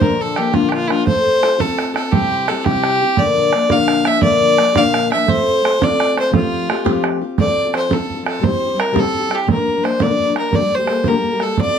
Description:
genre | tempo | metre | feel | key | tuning
celtic folk, Celtic jig | 114 BPM (dotted quarters) | 6/8 | straight | F major | A4 = 440 Hz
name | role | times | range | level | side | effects
warm fiddle | melody | 0.0-11.8 s | E4 to F5 | -17 LUFS | equal | none
picked steel-string acoustic guitar | accompaniment | 0.0-11.8 s | G2 to Bb4 | -19 LUFS | left 5 dB | none
bodhran | percussion | 0.0-11.7 s | none | -20 LUFS | right 6 dB | none
room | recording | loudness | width
light reverb | close, detailed microphones | -14 LUFS | side -7 dB against mid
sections
0.0-7.4 A section; 7.4-11.8 B section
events
none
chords
0.0 Bb; 1.1 F/A; 2.1 C; 3.2 Bb; 5.3 F/A; 6.3 Fadd9; 7.4 F; 8.4 C; 9.5 Bb; 10.5 Gmadd9

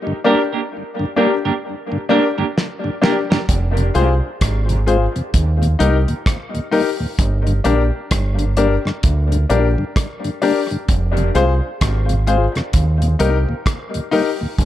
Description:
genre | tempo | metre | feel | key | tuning
dub reggae | 65 BPM | 4/4 | swing 61% on 16ths | G phrygian | A4 = 440 Hz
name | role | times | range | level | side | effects
mellow tonewheel organ | accompaniment | 0.1-14.5 s | Eb2 to F4 | -24 LUFS | left 1 dB | dub echo
semi-hollow electric guitar | accompaniment | 0.2-3.4 s | Bb3 to Bb4 | -22 LUFS | right 6 dB | dub echo
warm concert grand piano | stabs | 0.2-14.3 s | D4 to C5 | -20 LUFS | left 5 dB | dub echo
damped 70s drum kit | drums | 2.6-14.7 s | hi-hat, kick drum, rim click, snare drum | -20 LUFS | equal | none
deep dub fingered electric bass | bass | 3.5-14.7 s | F1 to Eb2 | -16 LUFS | right 1 dB | none
room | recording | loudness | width
light reverb | none | -15 LUFS | side -12 dB against mid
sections
0.0-14.7 A section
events
drum fill 2.6-3.5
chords
0.0 Gm; 3.5 Fm; 5.3 Eb; 7.2 Gm; 10.9 Fm; 12.7 Eb

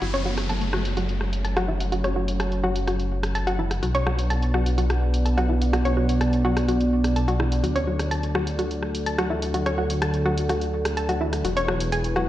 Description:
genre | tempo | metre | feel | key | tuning
melodic techno | 126 BPM | 4/4 | straight | F# minor | A4 = 440 Hz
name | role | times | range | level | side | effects
dark analog pad | sustained chords | 0.0-12.3 s | B3 to F#5 | -28 LUFS | right 1 dB | chorus
analog pluck | arpeggios | 0.0-12.2 s | E4 to A5 | -27 LUFS | left 1 dB | chorus, ping-pong delay
dark detuned saw bass | bass | 0.0-12.3 s | E1 to D2 | -25 LUFS | equal | none
punchy analog drum machine | drums | 0.0-12.3 s | hi-hat, rim click | -32 LUFS | equal | low-pass filter on hats, low-pass filter on snare
downlifter | sound effects | 0.0-3.8 s | none | -33 LUFS | equal | none
room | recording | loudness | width
moderate lush hall reverb, RT60 1.6 s, digital ambience | played on a big sound system in a bare room, large studio reverb | -21 LUFS | side -14 dB against mid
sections
0.0-12.3 A section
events
filter sweep on synth arpeggio sound 0.0-12.3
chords
0.0 F#m; 3.8 Bm; 7.6 D; 11.4 E

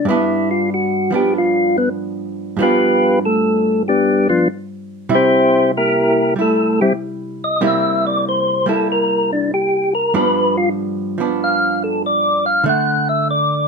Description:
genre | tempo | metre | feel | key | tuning
jazz | 95 BPM | 4/4 | swing 67% on 8ths | G major | A4 = 440 Hz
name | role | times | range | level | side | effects
percussive tonewheel organ | melody | 0.0-13.7 s | F3 to F#5 | -15 LUFS | left 1 dB | slow rotary speaker
archtop guitar, miked and amplified | accompaniment | 0.0-13.7 s | G2 to E4 | -20 LUFS | right 2 dB | none
room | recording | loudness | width
light reverb | none | -14 LUFS | side -4 dB against mid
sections
0.0-13.7 A section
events
tonewheel organ solo 0.0-13.7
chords
0.1 G7; 5.1 C7; 10.1 G7; 12.7 D

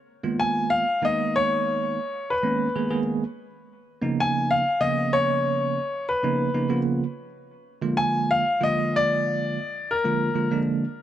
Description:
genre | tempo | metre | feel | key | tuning
jazz | 63 BPM (dotted quarters) | 6/8 | straight | unclear | A4 = 441 Hz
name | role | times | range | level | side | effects
bell-like tine electric piano | accompaniment | 0.2-10.8 s | C#3 to G#4 | -25 LUFS | right 3 dB | fast stereo tremolo
bright baby grand piano | melody | 0.4-10.6 s | A#4 to G#5 | -23 LUFS | left 2 dB | none
room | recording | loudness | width
light reverb | none | -22 LUFS | side -11 dB against mid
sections
0.0-11.0 A section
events
none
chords
0.0 G#m69; 3.2 C#13; 7.0 A#7

